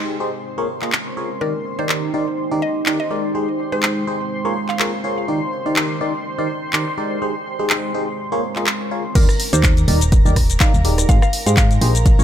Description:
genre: piano house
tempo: 124 BPM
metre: 4/4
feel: swing 55% on 16ths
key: Eb major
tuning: A4 = 439 Hz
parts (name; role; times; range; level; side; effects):
- analog string pad; sustained chords; 0.0-12.2 s; Bb4 to C6; -29 LUFS; right 1 dB; ensemble chorus, sidechain pumping
- barking FM electric piano; riff; 0.0-12.2 s; Eb3 to Eb5; -23 LUFS; equal; phaser, sidechain pumping, digital delay
- deep dark ambient pad; texture; 0.0-9.2 s; Ab3 to D6; -28 LUFS; right 2 dB; chorus, built-in reverb, sidechain pumping
- garage drum kit; drums; 0.8-12.2 s; crash cymbal, handclaps, hi-hat, rim click, shaker; -21 LUFS; left 1 dB; none
- mallet-like synth pluck; melody; 1.4-5.2, 9.2-11.7 s; Bb4 to F5; -27 LUFS; right 1 dB; chorus, digital delay
- solid FM bass; bass; 9.2-12.2 s; Eb1 to Ab2; -17 LUFS; equal; sidechain pumping
- electronic kick drum; drums; 9.2-12.2 s; none; -14 LUFS; equal; none
room: light reverb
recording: none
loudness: -16 LUFS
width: side -10 dB against mid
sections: 0.0-9.2 A section; 9.2-12.2 B section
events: drop 9.2-12.2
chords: 0.4 Bbm7; 1.4 Ebmaj7; 3.3 Abmaj7; 4.3 Bbm7; 5.3 Ebmaj7; 7.2 Abmaj7; 8.2 Bbm7; 9.2 Ebmaj7; 11.1 Abmaj7

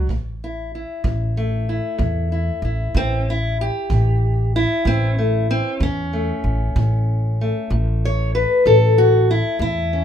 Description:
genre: acoustic country blues, solo or duo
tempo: 63 BPM (dotted quarters)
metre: 12/8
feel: straight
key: A mixolydian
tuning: A4 = 443 Hz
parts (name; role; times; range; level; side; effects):
- fingerpicked steel-string acoustic guitar; melody; 0.0-10.0 s; A2 to C#5; -20 LUFS; left 1 dB; none
- upright bass; bass; 0.0-10.0 s; A1 to E2; -20 LUFS; equal; none
- kick drum; drums; 0.1-6.9 s; none; -24 LUFS; right 1 dB; none
room: light reverb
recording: minimal, uncompressed stereo recording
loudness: -17 LUFS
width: side -9 dB against mid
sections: 0.0-7.7 A section; 7.7-10.0 B section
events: steel-string acoustic guitar solo 7.7-10.0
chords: 0.1 A; 7.7 A5

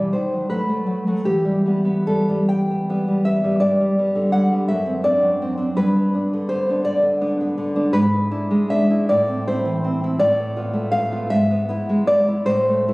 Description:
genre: romantic piece for solo classical guitar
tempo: 46-57 BPM (dotted quarters)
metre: 6/8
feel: rubato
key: unclear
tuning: A4 = 439 Hz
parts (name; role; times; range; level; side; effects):
- nylon-string guitar; solo; 0.0-12.9 s; F#2 to G5; -17 LUFS; equal; none
room: light reverb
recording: recorded on a phone in the room, studio reverb, compression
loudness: -17 LUFS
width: side -23 dB against mid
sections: 0.0-12.9 A section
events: none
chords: 0.1 B7/D#; 1.3 Em; 3.6 G; 4.7 D7/F#; 5.8 G; 7.9 E7/G#; 9.1 Am; 10.2 Bm7b5/A; 11.3 E/G#

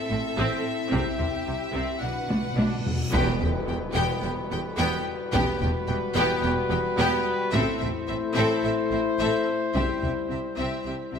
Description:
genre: cinematic, epic orchestral film score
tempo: 109 BPM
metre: 4/4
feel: straight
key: E minor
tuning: A4 = 440 Hz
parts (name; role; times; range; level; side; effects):
- rich studio violin section; melody; 0.0-11.2 s; E5 to G5; -33 LUFS; left 2 dB; none
- rich symphonic violin section; second line; 0.0-11.2 s; G4 to B4; -33 LUFS; left 2 dB; none
- dark French horn section; sustained chords; 0.0-11.2 s; G3 to F#4; -31 LUFS; left 7 dB; none
- clear symphonic viola section; accompaniment; 0.1-11.2 s; B3 to D4; -32 LUFS; right 1 dB; none
- clear symphonic double bass section; bass; 0.1-11.2 s; E1 to C2; -33 LUFS; right 3 dB; none
- rich symphonic cello section; bass; 0.1-11.2 s; E2 to C3; -33 LUFS; right 3 dB; none
- taiko ensemble; drums; 0.9-10.3 s; none; -28 LUFS; equal; none
- reverse cymbal and impact; sound effects; 2.5-5.3 s; none; -42 LUFS; equal; none
- timpani; percussion; 2.0-3.9 s; E2 to B2; -34 LUFS; left 1 dB; none
- mellow trumpet section; stabs; 3.1-11.2 s; B4 to C5; -30 LUFS; equal; none
- tam-tam; percussion; 3.1-5.3 s; none; -39 LUFS; left 2 dB; none
room: moderate scoring stage reverb, RT60 1.8 s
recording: none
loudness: -23 LUFS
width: side -7 dB against mid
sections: 0.0-3.1 A section; 3.1-11.2 B section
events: timpani fill 2.0-3.1; drum fill 2.3-3.1; reverse cymbal 2.5-3.1; band accent 3.1-3.7; impact 3.1-5.3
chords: 0.0 Am; 0.9 C; 2.0 Bm; 3.1 Emadd9; 7.5 Am; 9.7 C

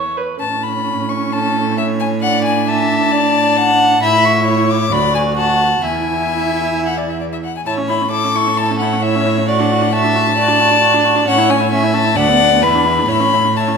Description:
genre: quick classical-period movement for string quartet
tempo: 132 BPM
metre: 4/4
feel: straight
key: A major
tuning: A4 = 440 Hz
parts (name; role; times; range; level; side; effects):
- warm violin; melody; 0.0-13.8 s; D5 to D6; -16 LUFS; left 5 dB; none
- rich violin; second line; 0.0-13.8 s; A4 to F#5; -18 LUFS; equal; none
- rich viola; accompaniment; 0.0-13.8 s; B3 to C#5; -20 LUFS; right 5 dB; none
- rich cello; bass; 0.4-13.8 s; D2 to A2; -20 LUFS; right 4 dB; none
room: moderate scoring stage reverb, RT60 1.7 s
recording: minimal, uncompressed stereo recording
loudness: -12 LUFS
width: side -6 dB against mid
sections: 0.4-13.8 A section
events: none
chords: 0.4 A; 2.2 D/A; 4.0 A; 4.9 D6; 5.8 E; 7.7 A; 9.5 D/A; 11.3 A; 12.2 Bm/D; 12.6 E5; 13.1 A

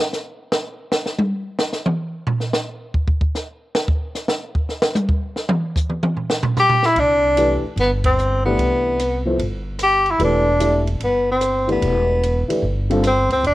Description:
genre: modal jazz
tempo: 149 BPM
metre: 4/4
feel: swing 66% on 8ths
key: C major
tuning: A4 = 439 Hz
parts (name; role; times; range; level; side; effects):
- compact cocktail drum kit; drums; 0.1-13.5 s; hi-hat, kick drum, ride cymbal, rim click, snare drum, toms; -21 LUFS; equal; cassette tape
- clear tenor saxophone; melody; 6.6-13.5 s; B3 to G4; -17 LUFS; left 1 dB; cassette tape
- upright bass; bass; 7.0-13.5 s; E1 to Db2; -22 LUFS; equal; none
- dark baby grand piano; accompaniment; 7.4-13.0 s; D3 to D5; -22 LUFS; left 1 dB; cassette tape
room: light reverb, small room ambience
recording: home recording on cassette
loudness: -17 LUFS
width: side -16 dB against mid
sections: 0.0-7.0 A section; 7.0-13.5 B section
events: drum solo 0.0-7.0; band accent 8.0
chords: 0.0 N.C.; 7.0 Cmaj9

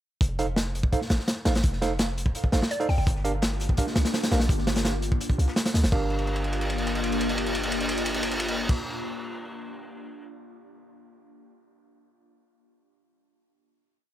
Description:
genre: drum and bass, jungle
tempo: 168 BPM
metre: 4/4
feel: straight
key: G minor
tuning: A4 = 440 Hz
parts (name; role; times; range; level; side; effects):
- warm 808-style bass; bass; 0.2-8.7 s; F1 to D2; -28 LUFS; equal; none
- crunchy breakbeat drum kit; drums; 0.2-10.2 s; crash cymbal, hi-hat, kick drum, ride cymbal, snare drum; -26 LUFS; equal; none
- tine electric piano; stabs; 0.4-8.7 s; D4 to F5; -32 LUFS; right 4 dB; vintage 12-bit sampler grit, dub echo
- mallet-like synth pluck; melody; 2.7-3.0 s; D5 to G5; -33 LUFS; left 1 dB; chorus, cassette tape, dub echo
- ethereal airy pad; sustained chords; 3.5-8.7 s; Bb3 to G4; -33 LUFS; left 3 dB; ensemble chorus, built-in reverb
- crunchy breakbeat drum kit; drums; 3.1-5.8 s; hi-hat, snare drum; -41 LUFS; left 4 dB; none
room: little or no reverb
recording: none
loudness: -23 LUFS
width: side -12 dB against mid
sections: 0.2-5.9 drop; 5.9-8.8 final chord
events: drop 0.2-5.9; drum fill 6.1-8.7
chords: 0.2 F7; 3.1 Gm7

